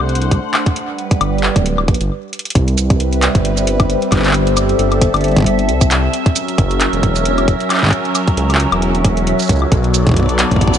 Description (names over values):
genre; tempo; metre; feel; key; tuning
IDM; 134 BPM; 4/4; swing 56% on 16ths; C lydian; A4 = 438 Hz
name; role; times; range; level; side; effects
phased analog pad; sustained chords; 0.0-10.8 s; F#3 to F#5; -18 LUFS; equal; phaser, chorus, vintage 12-bit sampler grit
dark detuned saw bass; bass; 0.0-10.8 s; D1 to C#2; -16 LUFS; equal; none
booming analog drum machine; drums; 0.1-10.8 s; handclaps, hi-hat, shaker, woodblock; -19 LUFS; left 1 dB; digital delay
electronic kick drum; drums; 0.3-10.7 s; none; -15 LUFS; equal; none
room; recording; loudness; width
light reverb; nothing above 10.6 kHz; -12 LUFS; side -9 dB against mid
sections
0.0-2.6 A section; 2.6-10.8 B section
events
stop 2.1-2.6; drum fill 2.3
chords
0.0 D7; 0.8 Gmaj7; 2.6 Cmaj7; 6.1 F#7; 9.7 Bm7